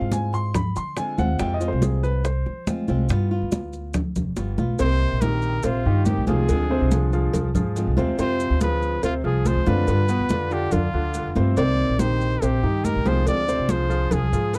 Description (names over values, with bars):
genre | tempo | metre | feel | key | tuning
latin, Cuban son and guajira | 142 BPM | 4/4 | straight | C minor from 4.8 s | A4 = 440 Hz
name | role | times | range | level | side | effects
flamenco guitar | accompaniment | 0.0-14.6 s | C3 to G4 | -32 LUFS | equal | none
warm concert grand piano | arpeggios | 0.0-14.6 s | B2 to C6 | -29 LUFS | equal | none
upright bass | bass | 0.0-14.6 s | F1 to F3 | -26 LUFS | equal | none
bongos and cowbell | percussion | 0.1-14.6 s | none | -34 LUFS | equal | none
congas | percussion | 0.1-14.6 s | none | -30 LUFS | equal | none
maracas | percussion | 0.1-14.6 s | none | -44 LUFS | equal | none
warm trumpet | melody | 4.8-14.6 s | F4 to D5 | -29 LUFS | equal | none
room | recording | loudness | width
little or no reverb | dark, warm production | -22 LUFS | mono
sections
0.0-4.8 A section; 4.8-14.6 B section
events
grand piano solo 0.0-4.8; drum fill 4.4-4.8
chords
0.0 Dm7b5; 1.4 Fm; 3.1 G7; 4.8 Cm7; 6.5 Dm7b5; 8.2 Fm; 9.9 G7; 11.6 Cm7; 13.3 Dm7b5